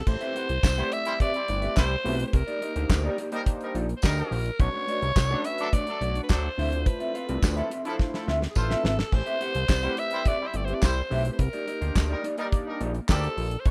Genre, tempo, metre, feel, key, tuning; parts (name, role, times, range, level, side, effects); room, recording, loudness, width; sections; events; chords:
early-eighties boogie funk; 106 BPM; 4/4; straight; A4 = 441 Hz
raspy alto saxophone; melody; 0.0-13.7 s; G#4 to E5; -33 LUFS; equal
fat analog bass; bass; 0.0-13.7 s; G1 to D2; -30 LUFS; equal
chorused polysynth; accompaniment; 0.1-13.7 s; A3 to D5; -38 LUFS; equal
mellow electric guitar; riff; 0.1-13.7 s; A3 to F#5; -36 LUFS; equal; subtle chorus
damped 70s drum kit; drums; 0.1-13.7 s; crash cymbal, handclaps, hi-hat, kick drum, snare drum, splash cymbal; -27 LUFS; equal
tambourine; percussion; 0.6-13.2 s; -42 LUFS; equal
clear horn section; second line; 0.8-13.3 s; F3 to D5; -37 LUFS; equal
little or no reverb; rough home demo mix; -27 LUFS; mono
0.1-13.7 A section
drum fill 8.0-9.1
0.1 Am9; 2.3 Cm9; 4.6 Bm9; 6.6 Dm9; 9.1 Am9; 11.4 Cm9